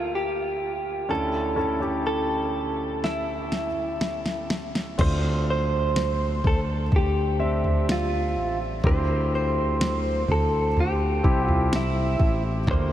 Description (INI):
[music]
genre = pop ballad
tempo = 62 BPM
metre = 4/4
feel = straight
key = D minor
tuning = A4 = 441 Hz
[part]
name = direct-recorded clean electric guitar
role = melody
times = 0.0-12.9 s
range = E4 to C5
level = -27 LUFS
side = equal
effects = lush chorus
[part]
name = warm concert grand piano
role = accompaniment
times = 0.0-12.9 s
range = D2 to E5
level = -29 LUFS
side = equal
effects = none
[part]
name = smooth R&B drum kit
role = drums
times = 3.0-12.9 s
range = crash cymbal, kick drum, snare drum, toms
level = -26 LUFS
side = equal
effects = none
[part]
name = modern bright fingered electric bass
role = bass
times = 5.0-12.9 s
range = A1 to D2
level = -26 LUFS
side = equal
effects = none
[sound]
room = wet huge ambient reverb, RT60 7.5 s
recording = dreamy mix soaked in reverb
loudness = -22 LUFS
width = side -12 dB against mid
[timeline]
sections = 0.0-5.0 A section; 5.0-12.9 B section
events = drum fill 3.0-5.0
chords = 0.0 Gmadd9/D; 1.1 A/D; 5.0 Dm7; 8.8 C/D